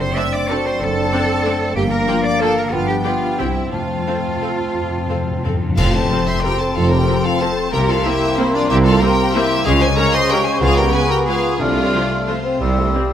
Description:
classical, orchestral ballroom waltz; 166-201 BPM; 3/4; rubato; F major; A4 = 438 Hz
rich studio violin section; melody; 0.0-13.1 s; C5 to E6; -24 LUFS; left 3 dB
dark clarinet; second line; 0.0-13.1 s; A3 to C5; -25 LUFS; equal
mellow hollow concert flute; second line; 0.0-13.1 s; D5 to F6; -25 LUFS; left 1 dB
warm bassoon; accompaniment; 0.0-13.1 s; G3 to C4; -25 LUFS; right 2 dB
concert harp; arpeggios; 0.0-13.1 s; F#2 to C6; -25 LUFS; left 9 dB
clear studio double bass section; bass; 0.0-12.9 s; F1 to F2; -23 LUFS; right 2 dB
rich studio cello section; bass; 0.0-12.9 s; F2 to E5; -24 LUFS; right 2 dB
rich studio violin section; second line; 0.2-13.1 s; E4 to A5; -24 LUFS; left 1 dB
rich studio viola section; accompaniment; 0.2-13.0 s; E3 to A4; -27 LUFS; right 1 dB
dark French horn section; sustained chords; 0.2-13.1 s; F3 to Bb4; -26 LUFS; left 3 dB
cymbal swell, clash cymbals and concert bass drum; percussion; 3.7-6.4 s; -26 LUFS; equal
timpani; percussion; 3.7-6.2, 11.6-12.1 s; F2 to C3; -26 LUFS; left 1 dB
mellow tuba; bass; 5.8-12.9 s; F1 to Db2; -25 LUFS; right 3 dB
moderate scoring stage reverb, RT60 1.5 s; -15 LUFS; side -10 dB against mid
0.0-5.8 A section; 5.8-13.1 A section
timpani fill 3.7-5.8; band accent 5.8-6.1
0.0 D7/F#; 1.8 Gm7; 2.7 G7; 3.4 C; 3.7 F; 7.7 C7; 9.7 Db; 10.6 Db7; 11.6 F/C; 12.6 C

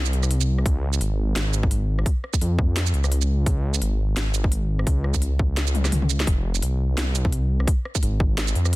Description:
half-time drum and bass; 171 BPM; 4/4; swing 57% on 16ths, half-time; A4 = 438 Hz
dark detuned saw bass; bass; 0.0-8.8 s; F1 to F2; -22 LUFS; equal
drum and bass drum kit; drums; 0.1-8.8 s; hi-hat, rim click, shaker, snare drum, toms; -28 LUFS; right 1 dB
electronic kick drum; drums; 0.7-8.3 s; -22 LUFS; equal; overdrive
digital ambience; dense, heavily limited modern master; -20 LUFS; side -20 dB against mid
0.0-8.8 A section
drum fill 5.7-6.3

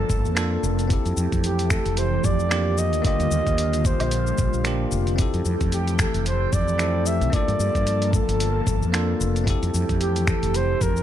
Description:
sunset chillout; 112 BPM; 4/4; swing 57% on 16ths; F major; A4 = 441 Hz
breathy flugelhorn; melody; 0.0-11.0 s; G4 to E5; -28 LUFS; right 1 dB; tape echo
bell-like tine electric piano; accompaniment; 0.0-11.0 s; D3 to A4; -29 LUFS; moving between left 6 dB and right 5 dB; auto-pan, digital delay
airy breathy pad; sustained chords; 0.0-11.0 s; D3 to A4; -29 LUFS; equal; chorus, phaser
mellow fretless electric bass; bass; 0.0-11.0 s; F1 to G2; -24 LUFS; equal
dusty soul sampler-style drum kit; drums; 0.1-11.0 s; finger snaps, hi-hat, shaker, woodblock; -30 LUFS; left 1 dB; overdrive
electronic kick drum; drums; 0.1-10.9 s; -24 LUFS; equal; overdrive
digital ambience; -20 LUFS; side -11 dB against mid
0.0-11.0 A section
0.0 Gm9; 0.9 Fmaj9; 2.8 Ebmaj9; 5.2 Fmaj9; 7.3 Gm9; 9.5 Fmaj9

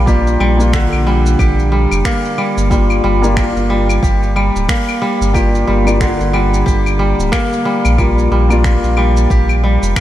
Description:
organic downtempo; 91 BPM; 4/4; swing 58% on 16ths; G minor pentatonic; A4 = 443 Hz
felt-muted upright piano; accompaniment; 0.0-10.0 s; Bb3 to F4; -19 LUFS; left 2 dB; wide subtle chorus, sidechain pumping, analog delay
kora; arpeggios; 0.0-10.0 s; D3 to G4; -17 LUFS; equal; analog delay
warm sub bass; bass; 0.0-9.9 s; D1 to Bb1; -14 LUFS; equal; sidechain pumping
electronic kick drum; drums; 0.1-10.0 s; -16 LUFS; equal
electronic shaker, claves and finger snaps; drums; 0.1-10.0 s; -24 LUFS; left 2 dB
moderate lush hall reverb, RT60 2.6 s; dreamy mix soaked in reverb; -11 LUFS; side -13 dB against mid
0.0-10.0 A section
0.0 Bb; 2.7 Gm7; 8.0 Bb

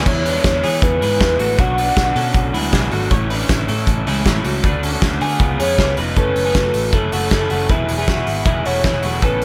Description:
jangly indie pop; 157 BPM; 4/4; straight; E mixolydian, E major from 6.2 s; A4 = 437 Hz
crunchy overdriven guitar; accompaniment; 0.0-9.4 s; F#2 to C#5; -26 LUFS; equal
twelve-string electric guitar; arpeggios; 0.0-9.4 s; G#3 to C#5; -26 LUFS; equal; vibrato effect
vintage muted picked electric bass; bass; 0.0-9.4 s; E1 to E3; -25 LUFS; equal
warbly nostalgic lead; melody; 0.1-2.7, 5.6-9.4 s; A4 to F#5; -23 LUFS; equal; chorus
loose indie drum kit; drums; 0.1-9.4 s; crash cymbal, hi-hat, kick drum, snare drum; -21 LUFS; equal
light reverb; -17 LUFS; mono
0.1-6.2 A section; 6.2-9.4 B section
0.1 E; 1.6 Bm; 3.1 A; 4.6 D; 5.4 C#7; 6.2 F#m7; 7.7 Eadd9

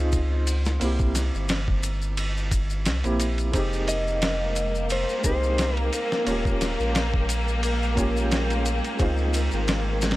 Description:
trip hop; 88 BPM; 4/4; swing 55% on 16ths; F minor; A4 = 442 Hz
felt-muted upright piano; accompaniment; 0.0-10.2 s; Ab3 to G4; -30 LUFS; right 1 dB; tremolo, tape echo
warm sub bass; bass; 0.0-10.2 s; Eb1 to Db2; -26 LUFS; equal; tube saturation
dusty soul sampler-style drum kit; drums; 0.1-10.2 s; kick drum, ride cymbal, snare drum; -28 LUFS; equal; studio reverb
maracas; percussion; 0.1-10.2 s; -36 LUFS; left 5 dB
clear studio string section; sustained chords; 3.5-10.2 s; Bb3; -30 LUFS; left 2 dB
flickering grainy texture; texture; 4.1-10.2 s; Ab3 to G5; -36 LUFS; equal; built-in reverb
electric slide guitar; melody; 3.9-7.3 s; Bb4 to Eb5; -29 LUFS; equal; vintage 12-bit sampler grit, tape echo
little or no reverb; -22 LUFS; side -17 dB against mid
0.0-10.2 A section
0.0 Dbmaj7; 0.8 C7; 3.5 Fm7; 6.3 Eb7; 9.0 Dbmaj7

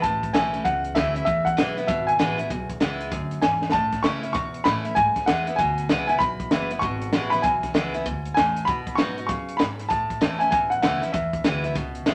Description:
rockabilly; 194 BPM; 4/4; swing 63% on 8ths; E mixolydian; A4 = 440 Hz
warm upright piano; melody; 0.0-12.1 s; E5 to C#6; -26 LUFS; equal
picked steel-string acoustic guitar; accompaniment; 0.0-12.1 s; E2 to F#4; -31 LUFS; equal
upright bass; bass; 0.0-12.1 s; F#1 to C#3; -34 LUFS; equal
compact cocktail drum kit; drums; 0.0-12.1 s; hi-hat, kick drum, snare drum; -29 LUFS; equal
moderate studio reverb, RT60 0.8 s; -23 LUFS; mono
0.0-12.1 A section
drum fill 3.6
0.0 A; 1.3 E; 3.7 A; 5.0 E; 8.7 B; 9.9 A; 11.1 E

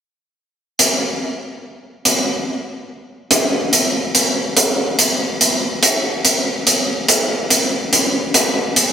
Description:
rock; 48 BPM (dotted quarters); 6/8; straight
hi-hat; drums; 0.8-8.9 s; -14 LUFS; equal
light reverb; -14 LUFS; side -8 dB against mid
0.8-3.3 A section; 3.3-8.9 B section

